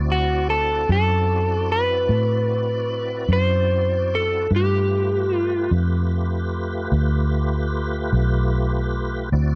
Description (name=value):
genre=blues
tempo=50 BPM (dotted quarters)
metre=12/8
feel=straight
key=unclear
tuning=A4 = 440 Hz
part: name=tonewheel organ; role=sustained chords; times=0.0-9.6 s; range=A3 to D5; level=-31 LUFS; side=equal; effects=chorus vibrato, slow rotary speaker
part: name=vintage muted fingered electric bass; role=bass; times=0.0-9.6 s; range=B1 to A2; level=-24 LUFS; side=equal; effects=none
part: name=electric slide guitar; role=melody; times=0.1-5.7 s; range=F#4 to C5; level=-24 LUFS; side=equal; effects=none
room=little or no reverb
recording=dry, close 1970s-style studio recording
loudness=-21 LUFS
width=mono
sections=0.0-9.6 A section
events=none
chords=0.0 D9; 4.5 G9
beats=0.89 2.10 3.30 | 4.51 5.72 6.92 8.13 | 9.34